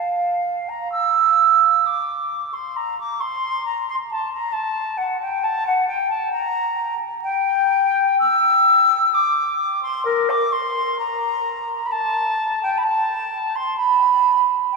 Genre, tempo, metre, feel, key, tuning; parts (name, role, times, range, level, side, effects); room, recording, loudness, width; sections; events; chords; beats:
classical, baroque-style fantasia for unaccompanied flute; 65 BPM; 4/4; rubato; C major from 8.2 s; A4 = 440 Hz
silver concert flute; solo; 0.0-14.8 s; Bb4 to E6; -17 LUFS; right 1 dB
wet cathedral reverb, RT60 5.4 s; in a vast, echoing space, vinyl crackle; -17 LUFS; side -2 dB against mid
0.0-14.8 A section
| 0.92 1.85 2.75 3.64 | 4.54 5.44 6.33 7.24 | 8.21 9.13 10.05 10.98 | 11.92 12.86 13.80 14.74